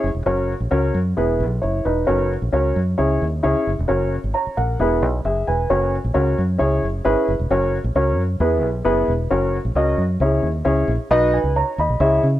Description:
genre	uptempo 1960s-style soul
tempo	133 BPM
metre	4/4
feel	straight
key	F# mixolydian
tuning	A4 = 436 Hz
part	warm upright piano	accompaniment	0.0-12.3 s	B3 to B5	-19 LUFS	equal	none
part	fingered electric bass	bass	0.0-12.4 s	E1 to C#3	-21 LUFS	equal	none
room	light reverb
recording	none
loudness	-17 LUFS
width	side -13 dB against mid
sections	0.0-11.1 A section; 11.1-12.4 B section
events	none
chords	0.3 F#; 1.2 E; 2.1 F#; 3.0 C#m; 3.9 F#; 4.8 E; 5.7 F#; 6.6 C#m; 7.5 F#; 8.4 E; 9.3 F#; 10.2 C#m; 11.1 B

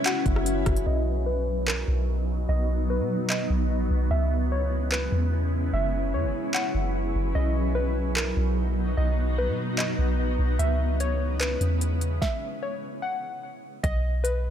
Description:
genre	hip hop, atmospheric cloud-rap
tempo	148 BPM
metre	4/4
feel	half-time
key	B major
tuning	A4 = 441 Hz
part	warbly dusty pluck	melody	0.0-14.5 s	A#4 to F#5	-32 LUFS	equal	chorus, low-pass filter, ping-pong delay
part	granular cloud pad	sustained chords	0.0-14.5 s	C#3 to B4	-30 LUFS	equal	built-in reverb, sidechain pumping, low-pass filter
part	Celtic harp	arpeggios	0.0-2.9 s	B3 to B5	-35 LUFS	left 6 dB	ping-pong delay
part	smooth R&B drum kit	drums	0.1-14.3 s	handclaps, hi-hat, kick drum, rim click, snare drum	-28 LUFS	equal	overdrive
part	soft 808-style bass	bass	0.3-14.5 s	F#1 to B2	-25 LUFS	equal	none
room	little or no reverb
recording	none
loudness	-23 LUFS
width	side -9 dB against mid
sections	0.9-13.8 A section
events	filter sweep 0.9-13.8; stop 12.2-13.8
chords	0.0 F#7sus4; 0.9 Bmaj7; 4.1 C#m7; 5.7 F#7sus4; 7.4 Bmaj7; 10.6 C#m7; 12.2 N.C.; 13.8 B

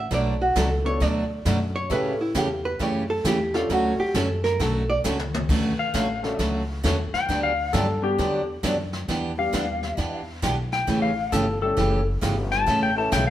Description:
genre	country, western swing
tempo	134 BPM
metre	4/4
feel	swing 66% on 8ths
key	D major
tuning	A4 = 440 Hz
part	archtop guitar, miked and amplified	second line	0.0-5.0 s	E4 to E5	-25 LUFS	right 2 dB	none
part	upright bass	bass	0.0-13.3 s	F#1 to A2	-28 LUFS	equal	none
part	picked steel-string acoustic guitar	accompaniment	0.1-13.2 s	B2 to A4	-26 LUFS	right 2 dB	none
part	jazz brush drum kit	drums	0.1-13.3 s	brushed snare drum, crash cymbal, hi-hat, kick drum, snare drum, toms	-30 LUFS	left 1 dB	none
part	warm upright piano	accompaniment	0.8-13.3 s	E3 to A4	-30 LUFS	left 2 dB	none
part	clean lap steel guitar	second line	5.8-13.3 s	G4 to A5	-25 LUFS	left 4 dB	none
room	wet stone room reverb, RT60 1.2 s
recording	band playing live in one room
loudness	-21 LUFS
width	side -12 dB against mid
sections	0.0-5.5 A section; 5.5-13.3 A section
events	hollow-body jazz guitar solo 0.0-5.5; drum fill 5.0-5.5; electric slide guitar solo 5.5-13.3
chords	0.1 Bm7; 1.9 A7; 3.7 Dmaj7; 7.3 Gmaj7/D; 9.1 Em7; 10.9 A7; 12.7 A

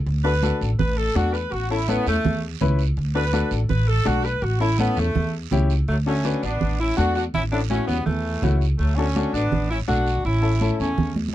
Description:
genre	latin, cumbia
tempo	165 BPM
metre	4/4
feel	straight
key	D major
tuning	A4 = 440 Hz
part	upright bass	bass	0.1-11.3 s	A1 to E2	-22 LUFS	equal	none
part	guiro	percussion	0.1-11.3 s	none	-38 LUFS	right 29 dB	none
part	clear saxophone section	melody	0.2-11.1 s	E3 to B4	-25 LUFS	equal	none
part	clear upright piano	accompaniment	0.2-10.9 s	C#4 to B4	-27 LUFS	left 6 dB	none
part	congas	percussion	0.4-11.3 s	none	-27 LUFS	right 3 dB	none
room	little or no reverb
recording	dry, close 1970s-style studio recording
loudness	-19 LUFS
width	side -13 dB against mid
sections	0.0-5.9 A section; 5.9-11.3 B section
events	saxophone section solo 0.0-5.9; drum fill 11.2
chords	0.1 D; 1.5 A; 3.0 D; 4.4 A7; 5.9 D; 7.3 A; 8.8 D; 10.3 A

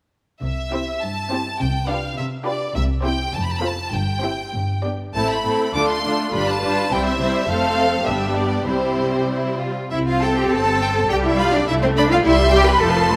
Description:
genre	quick classical-period movement for string orchestra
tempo	102 BPM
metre	2/4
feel	rubato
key	C major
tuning	A4 = 441 Hz
part	rich studio violin section	melody	0.4-13.2 s	C5 to D6	-27 LUFS	equal	none
part	rich studio cello section	bass	0.4-13.2 s	F2 to B4	-26 LUFS	equal	none
part	rich studio double bass section	bass	0.4-13.2 s	F1 to D2	-27 LUFS	equal	none
part	rich studio violin section	second line	0.7-13.2 s	D4 to B5	-26 LUFS	equal	none
part	rich studio viola section	accompaniment	0.7-13.2 s	F3 to F4	-26 LUFS	equal	none
room	moderate scoring stage reverb, RT60 1.8 s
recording	none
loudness	-20 LUFS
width	mono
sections	0.4-9.9 A section; 9.9-13.2 B section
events	none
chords	0.4 C; 1.6 G7/C; 2.8 C; 3.3 F; 3.9 C/G; 4.5 G; 5.1 Am; 5.7 Dm7; 6.3 G7; 6.9 C; 7.5 F; 8.1 G; 8.7 C; 9.9 C5; 11.1 G7/C; 12.2 C

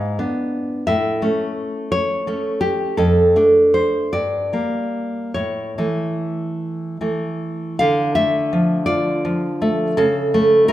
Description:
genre	romantic piece for solo classical guitar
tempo	47-58 BPM (dotted quarters)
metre	6/8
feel	rubato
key	D minor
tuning	A4 = 440 Hz
part	nylon-string guitar	solo	0.0-10.7 s	F2 to F5	-17 LUFS	equal	none
room	moderate recital hall reverb, RT60 1.7 s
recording	minimal, uncompressed stereo recording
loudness	-17 LUFS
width	side -13 dB against mid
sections	0.0-7.8 A section; 7.8-10.7 B section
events	none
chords	0.0 G#dim7; 0.9 A; 3.0 Dm/F; 4.1 Gm; 5.4 A; 7.8 Dm; 10.0 A/C#

